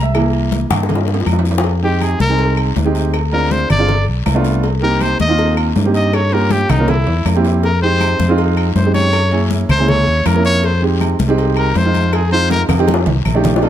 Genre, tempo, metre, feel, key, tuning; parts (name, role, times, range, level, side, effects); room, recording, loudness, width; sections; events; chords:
Afro-Cuban jazz; 160 BPM; 4/4; straight; F minor; A4 = 441 Hz
warm grand piano; accompaniment; 0.0-13.7 s; C3 to E5; -18 LUFS; right 3 dB
fretless electric bass; bass; 0.0-13.7 s; G1 to G2; -16 LUFS; left 1 dB
agogo bells and timbales; percussion; 0.1-13.7 s; -26 LUFS; right 4 dB
claves; percussion; 0.1-13.4 s; -31 LUFS; left 10 dB
congas; percussion; 0.1-13.7 s; -22 LUFS; left 2 dB
cowbell and bongos; percussion; 0.1-13.7 s; -25 LUFS; left 4 dB
guiro; percussion; 0.1-13.7 s; -34 LUFS; left 8 dB
bright trumpet; melody; 1.8-12.6 s; Eb4 to Eb5; -18 LUFS; left 1 dB; plate reverb
light reverb; close, detailed microphones; -12 LUFS; side -11 dB against mid
0.0-1.6 A section; 1.6-13.6 A section
grand piano solo 0.0-1.6; drum fill 0.7-1.6, 6.7-7.6, 12.5-13.6; trumpet solo 1.6-13.7
0.1 C7b13; 1.6 Fm7; 3.1 Dm7b5; 3.9 G7; 4.6 Cm7; 6.1 Gm7b5; 6.9 C7; 7.6 Fm7; 9.1 Gb9; 10.6 Fm7; 12.9 F13